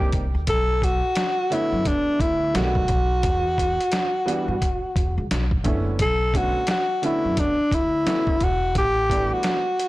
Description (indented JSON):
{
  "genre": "hip hop, jazz-hop",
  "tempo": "87 BPM",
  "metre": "4/4",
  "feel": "swing 61% on 16ths",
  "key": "B minor",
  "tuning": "A4 = 439 Hz",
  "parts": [
    { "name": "breathy alto saxophone", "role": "melody", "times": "0.0-9.9 s", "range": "D4 to A4", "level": "-22 LUFS", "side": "equal", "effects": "none" },
    { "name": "warm upright piano", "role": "accompaniment", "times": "0.0-9.6 s", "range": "D3 to C#5", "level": "-29 LUFS", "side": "right 2 dB", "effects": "none" },
    { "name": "upright bass", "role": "bass", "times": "0.0-9.3 s", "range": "E1 to G2", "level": "-25 LUFS", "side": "equal", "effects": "transformer saturation" },
    { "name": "trip hop sampler-style drum kit", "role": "drums", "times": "0.1-9.9 s", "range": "hi-hat, kick drum, snare drum", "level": "-26 LUFS", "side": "equal", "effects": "none" }
  ],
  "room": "light reverb, small room ambience",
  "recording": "blown-out, overdriven recording, overdrive",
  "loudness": "-20 LUFS",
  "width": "side -18 dB against mid",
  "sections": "0.0-6.0 A section; 6.0-9.9 A section",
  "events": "none",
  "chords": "0.5 Bm9; 2.5 B7b13; 3.2 Em9; 5.3 Bm11; 6.0 Bm9; 8.8 A9sus4"
}